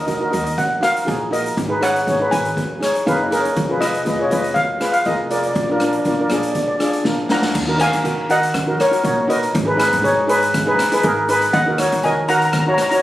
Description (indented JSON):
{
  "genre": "calypso",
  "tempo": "120 BPM",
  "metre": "4/4",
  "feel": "straight",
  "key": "Eb minor",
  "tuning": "A4 = 440 Hz",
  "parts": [
    { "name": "steel pan", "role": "melody", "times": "0.0-13.0 s", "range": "Bb4 to Bb5", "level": "-20 LUFS", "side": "equal", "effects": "none" },
    { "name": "steel pan", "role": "accompaniment", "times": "0.1-13.0 s", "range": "D4 to F5", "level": "-18 LUFS", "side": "equal", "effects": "none" },
    { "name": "upright bass", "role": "bass", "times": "0.1-12.7 s", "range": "F1 to Eb3", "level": "-25 LUFS", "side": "equal", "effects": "none" },
    { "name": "street-band drum kit", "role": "drums", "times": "0.1-13.0 s", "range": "crash cymbal, hi-hat, kick drum, rim click, snare drum", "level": "-25 LUFS", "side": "equal", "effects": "none" }
  ],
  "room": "light reverb",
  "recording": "recorded on a phone in the room, studio ambience, compression",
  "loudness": "-15 LUFS",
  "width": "side -14 dB against mid",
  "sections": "0.0-7.6 A section; 7.6-13.0 B section",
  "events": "steel pan fill 2.8-3.6; drum fill 7.1-7.6",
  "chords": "0.0 Ebm; 1.6 Abm; 3.6 Fdim; 5.6 Bb; 7.6 Ebm; 9.6 Abm; 11.5 Ebm7"
}